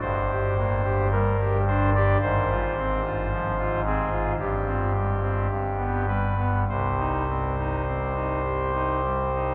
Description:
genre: classical, chorale-style piece for pipe organ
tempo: 50-55 BPM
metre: 4/4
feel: straight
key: C minor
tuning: A4 = 441 Hz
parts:
  - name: pipe organ, soft reed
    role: solo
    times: 0.0-9.5 s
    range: G1 to D5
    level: -25 LUFS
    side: equal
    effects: none
room: wet cathedral reverb, RT60 6.8 s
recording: recorded in a church or concert hall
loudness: -25 LUFS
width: mono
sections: 0.0-9.5 A section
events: none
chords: 0.0 Gm; 2.2 Fm/Ab; 4.4 C5/G; 5.5 G; 6.7 Cm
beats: 0.02 1.11 | 2.20 3.29 4.39 5.51 | 6.69 7.86 9.04

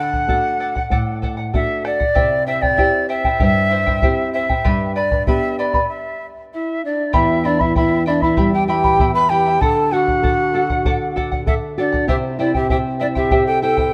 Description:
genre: andean folk, Andean ensemble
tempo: 97 BPM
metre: 4/4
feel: straight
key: E minor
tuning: A4 = 439 Hz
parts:
  - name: breathy bright large quena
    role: melody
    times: 0.0-13.9 s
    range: D5 to B5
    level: -22 LUFS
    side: equal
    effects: none
  - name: charango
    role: accompaniment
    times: 0.0-13.9 s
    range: E4 to B5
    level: -26 LUFS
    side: equal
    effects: none
  - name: nylon-string guitar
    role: accompaniment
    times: 0.0-13.9 s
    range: E2 to C5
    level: -25 LUFS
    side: equal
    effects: none
  - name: bombo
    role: percussion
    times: 0.1-13.9 s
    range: none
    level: -24 LUFS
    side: equal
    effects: none
  - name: mellow polished pan flute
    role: second line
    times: 6.5-13.9 s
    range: D4 to B4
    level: -24 LUFS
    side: equal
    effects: none
room: light reverb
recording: rough home demo mix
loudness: -17 LUFS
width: mono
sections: 0.0-7.1 A section; 7.1-13.9 A section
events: stop 5.9-7.1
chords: 0.0 D; 2.2 C; 4.7 G; 5.9 N.C.; 7.1 Em; 9.6 D; 12.1 C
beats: 0.28 0.91 1.53 | 2.15 2.78 3.40 4.03 | 4.65 5.27 5.90 6.52 | 7.14 7.76 8.38 9.00 | 9.62 10.23 10.85 11.47 | 12.08 12.70 13.31 13.92

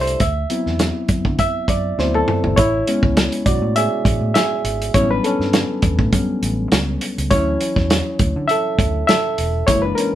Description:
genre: lush 1970s-style soul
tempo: 101 BPM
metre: 4/4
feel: swing 54% on 16ths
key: A major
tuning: A4 = 440 Hz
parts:
  - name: barky reed electric piano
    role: accompaniment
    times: 0.0-10.2 s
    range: E3 to E5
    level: -19 LUFS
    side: equal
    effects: overdrive
  - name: vintage muted fingered electric bass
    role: bass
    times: 0.0-9.9 s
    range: E1 to D3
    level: -23 LUFS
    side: equal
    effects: none
  - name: warm soul drum kit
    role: drums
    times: 0.1-10.1 s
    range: hi-hat, kick drum, snare drum, toms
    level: -19 LUFS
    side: equal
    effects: none
room: moderate studio ambience, RT60 0.5 s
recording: band playing live in one room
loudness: -16 LUFS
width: side -12 dB against mid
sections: 0.0-2.6 A section; 2.6-10.2 B section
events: reed electric piano solo 0.0-2.6, 2.6-10.2; drum fill 2.0-2.6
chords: 0.2 D13; 2.6 Amaj9; 4.9 A13; 7.3 Dmaj9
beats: | 0.21 0.80 1.39 1.99 | 2.58 3.17 3.76 4.35 | 4.95 5.54 6.13 6.72 | 7.31 7.90 8.49 9.09 | 9.68

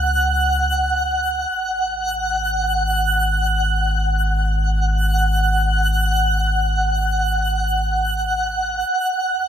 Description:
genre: ambient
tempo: free time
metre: none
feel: none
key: unclear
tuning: A4 = 441 Hz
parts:
  - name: warm sub bass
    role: bass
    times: 0.0-9.5 s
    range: G#1 to C#2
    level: -21 LUFS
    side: equal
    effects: none
  - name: twinkling granular texture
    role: texture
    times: 0.0-8.9 s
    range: F#5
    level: -19 LUFS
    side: right 1 dB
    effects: built-in reverb
room: wet shimmer reverb, RT60 8.9 s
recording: none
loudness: -17 LUFS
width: side -9 dB against mid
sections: 0.0-8.9 A section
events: none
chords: 0.0 C#sus4; 1.5 F#sus2/G#; 8.9 N.C.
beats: free time

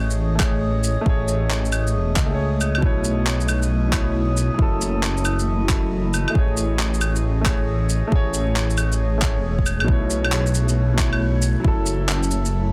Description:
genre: future garage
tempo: 136 BPM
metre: 4/4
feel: swing 66% on 16ths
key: unclear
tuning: A4 = 440 Hz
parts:
  - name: warm upright piano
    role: accompaniment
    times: 0.0-12.7 s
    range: B2 to C#5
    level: -29 LUFS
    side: equal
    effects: sidechain pumping, tape echo
  - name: granular cloud pad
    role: sustained chords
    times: 0.3-12.7 s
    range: A3 to E5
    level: -33 LUFS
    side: equal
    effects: built-in reverb, sidechain pumping
  - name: dark detuned saw bass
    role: bass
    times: 0.0-12.7 s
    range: E1 to C#2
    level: -24 LUFS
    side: equal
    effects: sidechain pumping
  - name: drifting glass-harmonics texture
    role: texture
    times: 0.0-9.9 s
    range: D#5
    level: -38 LUFS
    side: equal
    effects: chorus, built-in reverb
  - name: electronic shaker, handclaps and claves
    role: drums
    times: 0.1-12.5 s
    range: none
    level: -28 LUFS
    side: equal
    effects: soft clipping on snare
  - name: electronic kick drum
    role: drums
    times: 0.4-11.8 s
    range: none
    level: -23 LUFS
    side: equal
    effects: none
room: digital ambience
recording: dense, heavily limited modern master, vinyl crackle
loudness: -21 LUFS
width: mono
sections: 0.0-9.9 A section; 9.9-12.7 B section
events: none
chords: 0.0 Amaj7; 2.8 B9sus4; 4.6 F#m7; 6.4 Amaj7; 9.9 B9sus4; 11.6 F#m7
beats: 0.17 0.62 | 1.06 1.50 1.94 2.38 | 2.82 3.26 3.71 4.15 | 4.59 5.03 5.47 5.91 | 6.35 6.79 7.23 7.67 | 8.12 8.56 9.00 9.44 | 9.88 10.32 10.76 11.21 | 11.65 12.09 12.53

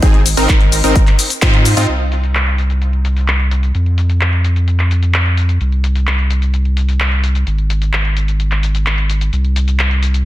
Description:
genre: EDM, festival progressive house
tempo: 129 BPM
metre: 4/4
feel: straight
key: unclear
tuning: A4 = 440 Hz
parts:
  - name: supersaw stab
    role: riff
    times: 0.0-1.9 s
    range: C4 to Bb4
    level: -18 LUFS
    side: equal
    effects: sidechain pumping, low-pass filter, dub echo
  - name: saturated sub bass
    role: bass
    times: 0.0-10.2 s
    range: Ab1 to Ab2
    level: -14 LUFS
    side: equal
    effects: sidechain pumping
  - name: big-room dance drum kit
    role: drums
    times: 0.0-10.2 s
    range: cabasa, crash cymbal, handclaps, hi-hat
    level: -19 LUFS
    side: left 1 dB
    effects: low-pass filter on hats, low-pass filter on perc, low-pass filter on snare, low-pass filter on cymbals
  - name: electronic kick drum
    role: drums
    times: 0.0-1.5 s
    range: none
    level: -11 LUFS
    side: equal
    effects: none
room: little or no reverb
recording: dense, heavily limited modern master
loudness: -12 LUFS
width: side -15 dB against mid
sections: 0.0-1.9 A section; 1.9-10.2 B section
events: drop 0.0-1.9; band accent 1.4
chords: 0.0 Ab; 1.9 N.C.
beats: | 0.03 0.49 0.96 1.42 | 1.89 2.35 2.82 3.28 | 3.75 4.21 4.68 5.14 | 5.61 6.07 6.54 7.00 | 7.47 7.93 8.40 8.86 | 9.33 9.79

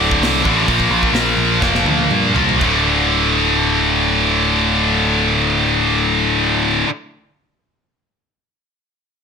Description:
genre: heavy metal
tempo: 116-135 BPM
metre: 4/4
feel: straight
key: D minor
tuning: A4 = 439 Hz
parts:
  - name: heavy high-gain guitar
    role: riff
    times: 0.0-6.9 s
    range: D2 to Bb3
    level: -17 LUFS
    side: right 14 dB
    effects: distortion
  - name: scooped high-gain guitar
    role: riff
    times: 0.0-6.9 s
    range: D2 to Bb3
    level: -17 LUFS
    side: left 12 dB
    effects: distortion
  - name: growling picked electric bass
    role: bass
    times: 0.0-6.8 s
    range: D1 to G2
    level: -22 LUFS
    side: equal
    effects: overdrive
  - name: tight metal drum kit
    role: drums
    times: 0.1-2.7 s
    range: crash cymbal, hi-hat, kick drum, snare drum, toms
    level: -23 LUFS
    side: equal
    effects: none
room: light reverb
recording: blown-out, overdriven recording, overdrive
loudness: -13 LUFS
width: side -6 dB against mid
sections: 0.0-2.6 A section; 2.6-6.7 B section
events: slowing down 0.0-2.6; drum fill 1.6-2.6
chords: 0.0 D5; 0.7 Bb5; 2.6 D5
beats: 0.22 | 0.67 1.14 1.61 2.10 | 2.60 3.12 3.63 4.14 | 4.66 5.17 5.69 6.20

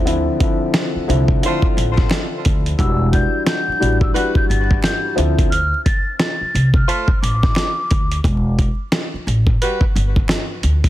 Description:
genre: hip hop, boom-bap hip-hop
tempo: 88 BPM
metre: 4/4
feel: swing 60% on 16ths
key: E phrygian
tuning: A4 = 441 Hz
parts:
  - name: dark grand piano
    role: accompaniment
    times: 0.0-5.5 s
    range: D3 to F#4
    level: -21 LUFS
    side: left 2 dB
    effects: high-pass filter, low-pass filter
  - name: upright bass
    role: bass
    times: 0.0-10.9 s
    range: E1 to D2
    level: -18 LUFS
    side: equal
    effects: none
  - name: dusty soul sampler-style drum kit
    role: drums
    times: 0.1-10.9 s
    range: hi-hat, kick drum, snare drum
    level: -18 LUFS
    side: equal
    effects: none
  - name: finger snap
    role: percussion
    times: 0.7-10.5 s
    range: none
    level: barely audible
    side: none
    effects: none
  - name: dark saxophone section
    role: stabs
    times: 1.5-9.8 s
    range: G3 to C5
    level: -25 LUFS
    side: right 1 dB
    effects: high-pass filter, low-pass filter, ping-pong delay
  - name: breathy mellow concert flute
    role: melody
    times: 2.8-8.2 s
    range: D6 to A6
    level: -23 LUFS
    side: left 1 dB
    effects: high-pass filter, low-pass filter, ping-pong delay
room: small room ambience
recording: dense, heavily limited modern master, vinyl crackle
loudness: -15 LUFS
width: side -14 dB against mid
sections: 0.0-10.9 A section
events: none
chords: 0.0 Dm9; 2.8 Em9; 5.2 Dm7; 8.2 Emadd9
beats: | 0.06 0.74 1.43 2.11 | 2.79 3.47 4.15 4.83 | 5.52 6.20 6.88 7.56 | 8.24 8.93 9.61 10.29

